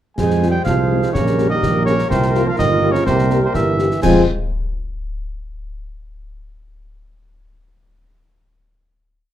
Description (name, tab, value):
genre	military-style march for wind band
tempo	125 BPM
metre	2/4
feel	straight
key	F minor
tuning	A4 = 436 Hz
part	warm cornet	melody	0.2-4.2 s	C5 to Ab5	-22 LUFS	right 1 dB	none
part	warm euphonium	second line	0.2-4.2 s	C3 to Ab3	-22 LUFS	right 4 dB	none
part	warm woodwind section	second line	0.2-4.2 s	F4 to C5	-26 LUFS	equal	none
part	dark trombone section	sustained chords	0.2-4.2 s	F3 to C4	-24 LUFS	right 1 dB	none
part	dark tuba	bass	0.2-4.2 s	G1 to F2	-19 LUFS	right 2 dB	none
part	concert snare drum, clash cymbals and concert bass drum	drums	0.2-4.3 s	none	-25 LUFS	left 2 dB	none
part	dark French horn section	accompaniment	0.4-4.2 s	G3 to G4	-21 LUFS	left 4 dB	none
room	moderate large studio reverb, RT60 0.9 s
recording	dark, warm production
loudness	-14 LUFS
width	side -11 dB against mid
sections	0.2-4.0 A section; 4.0-5.0 final chord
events	none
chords	0.2 Fm; 1.1 Eb7/Bb; 2.1 C7sus4; 3.1 C7; 4.0 Fm